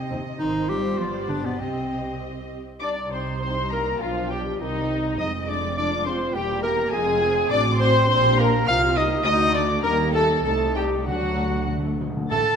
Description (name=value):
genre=quick classical-period movement for symphony orchestra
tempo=96-105 BPM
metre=2/4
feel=rubato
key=C minor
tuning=A4 = 440 Hz
part: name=clear clarinet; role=second line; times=0.0-12.6 s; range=B3 to F5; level=-28 LUFS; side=left 1 dB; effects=none
part: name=muted chamber violin section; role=second line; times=0.0-12.6 s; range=Eb4 to A5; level=-30 LUFS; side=left 3 dB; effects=none
part: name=muted chamber cello section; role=bass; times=0.0-12.4 s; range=E2 to G3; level=-31 LUFS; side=right 2 dB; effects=none
part: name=muted studio violin section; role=melody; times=0.1-12.6 s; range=C5 to A6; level=-30 LUFS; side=left 2 dB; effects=none
part: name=muted studio viola section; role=accompaniment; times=0.1-12.4 s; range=F3 to A4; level=-31 LUFS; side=right 1 dB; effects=none
part: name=muted chamber double bass section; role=bass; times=0.1-12.4 s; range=E1 to Eb2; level=-29 LUFS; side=right 3 dB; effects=none
part: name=silver concert flute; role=second line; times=2.8-11.7 s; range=Eb5 to F6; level=-30 LUFS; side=left 2 dB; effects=none
part: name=mellow French horn section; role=sustained chords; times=2.8-12.4 s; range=Eb3 to F4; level=-28 LUFS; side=left 2 dB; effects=none
part: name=clear trumpet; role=stabs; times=2.8-12.6 s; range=Eb4 to A5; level=-28 LUFS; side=right 2 dB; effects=none
part: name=timpani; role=percussion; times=11.1-12.2 s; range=D3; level=-29 LUFS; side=left 2 dB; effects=none
room=wet scoring stage reverb, RT60 1.6 s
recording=none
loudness=-20 LUFS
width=side -7 dB against mid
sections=0.0-2.8 A section; 2.8-12.3 B section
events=timpani fill 11.1-12.3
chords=0.4 Ab; 1.0 G7; 1.6 Cm; 4.0 G7/B; 4.6 Cm; 5.2 Fm; 6.4 Edim; 6.9 Fm; 7.5 D7/A; 8.1 Gm/Bb; 8.7 Cm; 9.3 D; 9.8 Eb; 10.5 Am7b5/C; 11.1 D